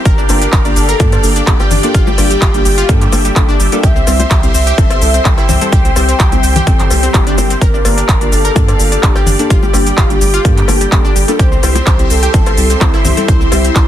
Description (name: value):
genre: progressive house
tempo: 127 BPM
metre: 4/4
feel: straight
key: G dorian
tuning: A4 = 440 Hz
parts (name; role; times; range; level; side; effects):
- filtered supersaw swell; sustained chords; 0.0-13.9 s; G4 to C6; -21 LUFS; right 1 dB; phaser, sidechain pumping
- analog pluck; arpeggios; 0.0-13.8 s; G3 to C5; -20 LUFS; equal; chorus, sidechain pumping, digital delay
- warm velvety synth lead; melody; 0.1-13.9 s; E4 to G5; -19 LUFS; equal; chorus, sidechain pumping, digital delay
- round analog bass; bass; 0.1-13.9 s; G1 to G2; -15 LUFS; equal; sidechain pumping
- big-room dance drum kit; drums; 0.1-13.9 s; cabasa, handclaps, hi-hat; -19 LUFS; equal; overdrive, sidechain pumping on hats, sidechain pumping on cymbals, sidechain pumping on perc
- electronic kick drum; drums; 0.1-13.9 s; none; -12 LUFS; equal; overdrive
- deep mellow chord stab; stabs; 0.3-13.6 s; G3 to Bb4; -20 LUFS; left 2 dB; wide subtle chorus, sidechain pumping, digital delay
- cowbell, bongos and congas; percussion; 0.3-13.6 s; none; -21 LUFS; left 6 dB; sidechain pumping on perc
- swell; sound effects; 6.8-7.6 s; none; -23 LUFS; left 1 dB; none
room: little or no reverb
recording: dense, heavily limited modern master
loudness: -8 LUFS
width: side -11 dB against mid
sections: 0.0-13.9 A section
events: swell 6.8-7.6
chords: 0.1 Gm7; 3.8 C; 7.6 Gm7; 11.4 C